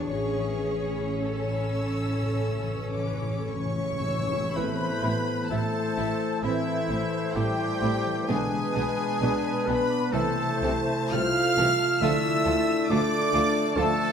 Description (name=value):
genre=classical, slow romantic movement for symphony orchestra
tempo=51-70 BPM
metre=4/4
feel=rubato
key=A major, A minor from 4.6 s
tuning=A4 = 440 Hz
part: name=clear studio violin section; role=melody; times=0.0-14.1 s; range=E5 to F6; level=-33 LUFS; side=left 4 dB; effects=none
part: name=rich studio violin section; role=second line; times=0.0-13.9 s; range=C4 to C#5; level=-36 LUFS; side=left 2 dB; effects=none
part: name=rich studio viola section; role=accompaniment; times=0.0-13.9 s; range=E3 to B4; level=-36 LUFS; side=right 1 dB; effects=none
part: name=concert harp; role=arpeggios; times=0.0-14.1 s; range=A2 to D6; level=-34 LUFS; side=left 6 dB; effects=none
part: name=rich studio cello section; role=bass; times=0.0-13.8 s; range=D2 to D4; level=-35 LUFS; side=right 2 dB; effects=none
part: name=rich studio double bass section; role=bass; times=0.0-13.8 s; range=A1 to E2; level=-34 LUFS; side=right 2 dB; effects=none
part: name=timpani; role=percussion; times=0.1-4.5 s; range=A2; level=-35 LUFS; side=equal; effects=none
part: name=warm oboe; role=second line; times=3.5-14.1 s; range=E4 to F5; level=-34 LUFS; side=right 1 dB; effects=none
part: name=mellow French horn section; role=sustained chords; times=3.5-14.1 s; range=E3 to F4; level=-31 LUFS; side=left 2 dB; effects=none
part: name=warm trumpet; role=stabs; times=3.5-14.1 s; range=E4 to F5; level=-32 LUFS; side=right 3 dB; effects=none
part: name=flute section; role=second line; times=4.6-14.1 s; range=B4 to D5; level=-36 LUFS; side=equal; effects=none
part: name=warm clarinet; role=second line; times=4.6-14.1 s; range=D4 to F4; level=-36 LUFS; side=equal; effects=none
part: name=mellow bassoon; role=accompaniment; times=4.6-14.1 s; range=A3 to B3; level=-33 LUFS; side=right 3 dB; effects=none
part: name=dark trombone section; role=sustained chords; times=4.6-14.1 s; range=D3 to C4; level=-34 LUFS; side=right 4 dB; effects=none
room=wet scoring stage reverb, RT60 1.6 s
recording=minimal, uncompressed stereo recording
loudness=-24 LUFS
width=side -7 dB against mid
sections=0.0-4.6 A section; 4.6-14.1 B section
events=timpani fill 0.1-4.6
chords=0.1 A; 4.6 Am; 8.3 G#dim/B; 10.1 Am/C; 12.0 Dm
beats=| 0.11 1.24 2.35 3.50 | 4.57 5.51 6.44 7.36 | 8.29 9.21 10.13 11.11 | 12.02 12.90 13.77